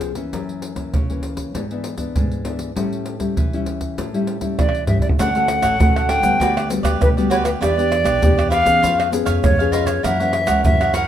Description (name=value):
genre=samba and choro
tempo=99 BPM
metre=4/4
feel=straight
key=D major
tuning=A4 = 440 Hz
part: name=nylon-string guitar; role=accompaniment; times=0.0-11.1 s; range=F#2 to G#4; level=-23 LUFS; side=left 4 dB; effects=none
part: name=surdo, pandeiro, tamborim and egg shaker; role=percussion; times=0.0-11.1 s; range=none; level=-21 LUFS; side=right 1 dB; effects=none
part: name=breathy silver concert flute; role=melody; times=4.6-11.1 s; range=B4 to G5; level=-19 LUFS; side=equal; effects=none
part: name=cavaquinho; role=accompaniment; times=5.2-11.1 s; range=D4 to F#5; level=-23 LUFS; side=right 3 dB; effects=none
part: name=upright bass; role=bass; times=5.2-11.0 s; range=A1 to E3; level=-24 LUFS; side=right 1 dB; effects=none
room=moderate studio reverb, RT60 0.9 s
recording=minimal, uncompressed stereo recording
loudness=-16 LUFS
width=side -10 dB against mid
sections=0.0-5.2 A section; 5.2-11.1 B section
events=drum fill 4.6-5.2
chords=0.3 F#7; 1.5 E7/G#; 2.8 A7; 5.2 Dmaj7; 6.4 Gmaj7/D; 7.6 Em7; 8.8 C#7/E#; 10.0 F#7